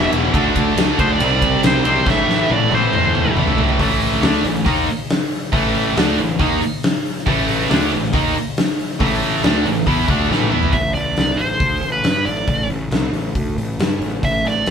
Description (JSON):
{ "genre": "hard rock", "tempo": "138 BPM", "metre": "4/4", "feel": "straight", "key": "A dorian", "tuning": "A4 = 439 Hz", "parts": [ { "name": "nasal lead guitar with a parked wah", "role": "melody", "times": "0.0-3.3, 10.7-14.7 s", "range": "B4 to E5", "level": "-19 LUFS", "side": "right 1 dB", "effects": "overdrive" }, { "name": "distorted electric guitar", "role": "riff", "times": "0.0-10.7 s", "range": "E2 to E4", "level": "-24 LUFS", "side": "left 7 dB", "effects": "overdrive" }, { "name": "high-gain distorted guitar", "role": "riff", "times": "0.0-10.7 s", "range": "A2 to F#4", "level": "-24 LUFS", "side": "left 1 dB", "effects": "distortion" }, { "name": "tight distorted guitar", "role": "riff", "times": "0.0-10.7 s", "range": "E2 to E4", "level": "-21 LUFS", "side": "right 6 dB", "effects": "distortion" }, { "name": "fuzz picked electric bass", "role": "bass", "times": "0.0-14.7 s", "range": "E1 to G2", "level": "-22 LUFS", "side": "equal", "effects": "overdrive" }, { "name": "big rock drum kit", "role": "drums", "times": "0.1-14.7 s", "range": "hi-hat, kick drum, ride cymbal, snare drum, toms", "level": "-19 LUFS", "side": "left 1 dB", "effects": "none" } ], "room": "moderate studio reverb, RT60 0.8 s", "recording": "band playing live in one room", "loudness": "-15 LUFS", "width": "side -7 dB against mid", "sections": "0.0-3.8 A section; 3.8-10.7 B section; 10.7-14.7 C section", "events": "drum fill 2.1-3.8, 10.3-10.7", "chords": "0.3 D; 1.2 C; 2.1 Am; 3.8 A5; 10.7 N.C.", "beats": "| 0.34 0.77 1.21 1.64 | 2.07 2.50 2.93 3.36 | 3.80 4.23 4.66 5.09 | 5.53 5.96 6.39 6.83 | 7.26 7.70 8.13 8.56 | 9.00 9.43 9.87 10.30 | 10.74 11.17 11.61 12.04 | 12.48 12.92 13.35 13.79 | 14.23 14.66" }